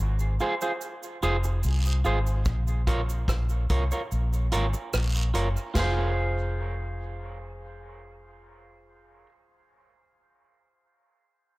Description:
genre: dub reggae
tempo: 73 BPM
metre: 4/4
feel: straight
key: F minor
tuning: A4 = 440 Hz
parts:
  - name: vintage muted fingered electric bass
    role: bass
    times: 0.0-9.2 s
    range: F1 to C2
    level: -26 LUFS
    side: equal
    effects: none
  - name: cabasa and guiro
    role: percussion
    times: 0.2-6.1 s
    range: none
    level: -40 LUFS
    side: right 3 dB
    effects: none
  - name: electric guitar at the edge of break-up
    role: accompaniment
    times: 0.4-9.3 s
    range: F4 to Db5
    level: -31 LUFS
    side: right 2 dB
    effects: dub echo
  - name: vintage drum kit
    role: drums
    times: 2.5-6.0 s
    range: china cymbal, hi-hat, kick drum, rim click, snare drum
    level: -29 LUFS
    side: equal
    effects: none
room: light reverb, studio ambience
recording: none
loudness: -24 LUFS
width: side -21 dB against mid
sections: 0.0-5.8 A section; 5.8-9.0 B section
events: break 0.0-2.5; kick muted 4.1-5.8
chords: 0.0 Fm; 2.5 Bbm; 5.8 Fm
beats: 0.81 1.63 | 2.46 3.28 4.10 4.93 | 5.75 6.57 7.40 8.22

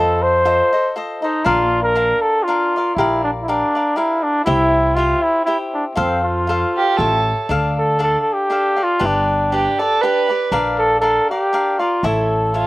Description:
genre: mexican folk, mariachi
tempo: 119 BPM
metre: 3/4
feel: swing 55% on 8ths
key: F major, D harmonic minor from 7.5 s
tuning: A4 = 440 Hz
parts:
  - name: mellow trumpet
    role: melody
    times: 0.0-12.7 s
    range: C4 to C5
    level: -17 LUFS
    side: equal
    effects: none
  - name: cavaquinho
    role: accompaniment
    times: 0.0-12.7 s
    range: D4 to F5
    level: -21 LUFS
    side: left 2 dB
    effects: slapback echo
  - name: upright bass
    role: bass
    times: 0.0-12.7 s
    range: G1 to F2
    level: -23 LUFS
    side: equal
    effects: none
  - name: dark violin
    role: second line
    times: 6.8-12.7 s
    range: F4 to B4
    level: -18 LUFS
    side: right 3 dB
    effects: none
room: little or no reverb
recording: recorded outdoors, with no room sound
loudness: -15 LUFS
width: side -19 dB against mid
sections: 0.0-7.5 A section; 7.5-12.7 B section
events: none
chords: 0.0 F7; 1.5 Bb; 3.0 Gm7/Bb; 4.5 C; 6.0 F; 7.0 A7; 7.5 Dm; 9.0 G; 10.5 Bb; 12.0 A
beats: 0.44 0.95 | 1.45 1.96 2.46 | 2.96 3.46 3.96 | 4.47 4.96 5.47 | 5.97 6.47 6.98 | 7.49 8.00 8.50 | 9.01 9.51 10.01 | 10.52 11.02 11.53 | 12.03 12.54

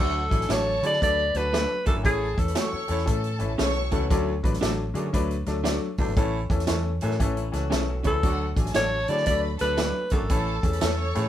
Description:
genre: uptempo 1960s-style soul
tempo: 116 BPM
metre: 4/4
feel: swing 64% on 8ths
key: unclear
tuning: A4 = 442 Hz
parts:
  - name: warm alto saxophone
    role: melody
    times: 0.0-3.6, 8.1-11.3 s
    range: G#4 to D5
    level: -26 LUFS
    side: equal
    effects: none
  - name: warm studio violin section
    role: second line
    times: 0.0-4.0, 8.2-11.3 s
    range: F#4 to C#6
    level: -35 LUFS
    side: equal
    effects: none
  - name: clear grand piano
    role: accompaniment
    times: 0.0-11.3 s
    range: E3 to B4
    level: -30 LUFS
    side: left 4 dB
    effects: none
  - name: growling baritone saxophone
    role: riff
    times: 0.0-11.3 s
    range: D2 to B2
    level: -35 LUFS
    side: right 5 dB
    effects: none
  - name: vintage muted fingered electric bass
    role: bass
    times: 0.0-11.3 s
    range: G#1 to D3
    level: -28 LUFS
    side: equal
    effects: none
  - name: swinging big-band drum kit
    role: drums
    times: 0.3-11.2 s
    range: hi-hat, kick drum, snare drum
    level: -27 LUFS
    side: equal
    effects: none
  - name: direct-recorded clean electric guitar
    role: stabs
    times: 0.5-11.0 s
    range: C#4 to D5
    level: -32 LUFS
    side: right 3 dB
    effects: none
  - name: electric guitar through a small old amp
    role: riff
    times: 3.6-8.2 s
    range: A3 to A4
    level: -38 LUFS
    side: left 3 dB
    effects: none
room: moderate studio ambience, RT60 0.5 s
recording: band playing live in one room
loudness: -22 LUFS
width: side -11 dB against mid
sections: 0.0-11.3 A section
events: none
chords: 0.0 D; 2.0 A; 4.1 D; 6.2 A; 8.2 D; 10.3 A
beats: 0.50 1.01 1.53 | 2.04 2.56 3.07 3.59 | 4.10 4.62 5.13 5.65 | 6.17 6.68 7.20 7.72 | 8.23 8.75 9.27 9.79 | 10.30 10.82

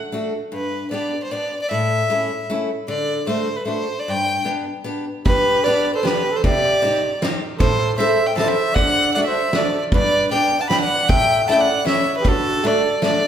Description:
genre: alpine folk, alpine dance band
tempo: 154 BPM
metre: 3/4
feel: straight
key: G major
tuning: A4 = 440 Hz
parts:
  - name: picked steel-string acoustic guitar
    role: accompaniment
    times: 0.1-13.2 s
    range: G2 to A4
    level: -23 LUFS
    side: left 2 dB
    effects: none
  - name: clear fiddle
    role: melody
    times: 0.5-13.3 s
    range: A4 to B5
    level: -20 LUFS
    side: equal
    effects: none
  - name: dark trumpet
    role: second line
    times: 5.3-13.3 s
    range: F#4 to G5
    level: -24 LUFS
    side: right 4 dB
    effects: none
  - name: loose indie drum kit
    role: drums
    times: 5.3-13.1 s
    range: kick drum, ride cymbal, snare drum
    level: -22 LUFS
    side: equal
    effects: none
room: wet recital hall reverb, RT60 1.5 s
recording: recorded in a church or concert hall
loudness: -17 LUFS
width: side -9 dB against mid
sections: 0.0-5.3 A section; 5.3-13.3 A section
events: none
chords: 0.0 D; 0.5 G; 1.7 A; 2.9 D; 4.1 G; 6.4 Cmadd9; 7.6 Am; 8.8 D; 9.9 G; 11.1 A7; 12.2 D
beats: 0.14 | 0.53 0.93 1.33 | 1.72 2.11 2.50 | 2.90 3.29 3.68 | 4.07 4.46 4.86 | 5.26 5.65 6.04 | 6.44 6.83 7.21 | 7.60 7.98 8.37 | 8.76 9.14 9.53 | 9.92 10.31 10.70 | 11.09 11.48 11.86 | 12.25 12.63 13.02

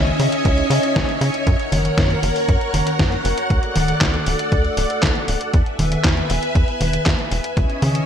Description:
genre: italo disco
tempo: 118 BPM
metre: 4/4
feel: straight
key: unclear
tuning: A4 = 440 Hz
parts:
  - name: string machine, full ensemble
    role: sustained chords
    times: 0.0-8.1 s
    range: C#4 to G#5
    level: -21 LUFS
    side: equal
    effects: ensemble chorus
  - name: tight sequencer bass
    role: bass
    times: 0.0-8.0 s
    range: D1 to C#3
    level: -21 LUFS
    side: equal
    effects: none
  - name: detuned 8-bit digital drum machine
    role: drums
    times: 0.1-8.1 s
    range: congas, handclaps, hi-hat, snare drum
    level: -21 LUFS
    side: equal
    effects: studio reverb, gated reverb
  - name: electronic kick drum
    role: drums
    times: 0.5-7.7 s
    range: none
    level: -20 LUFS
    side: equal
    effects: studio reverb
room: light reverb, digital ambience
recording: none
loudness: -16 LUFS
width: side -8 dB against mid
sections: 0.0-8.1 A section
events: none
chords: 0.0 C#madd9; 1.5 F#; 3.5 D; 5.5 E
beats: 0.45 0.96 | 1.47 1.98 2.48 2.99 | 3.50 4.01 4.52 5.03 | 5.54 6.04 6.55 7.06 | 7.57

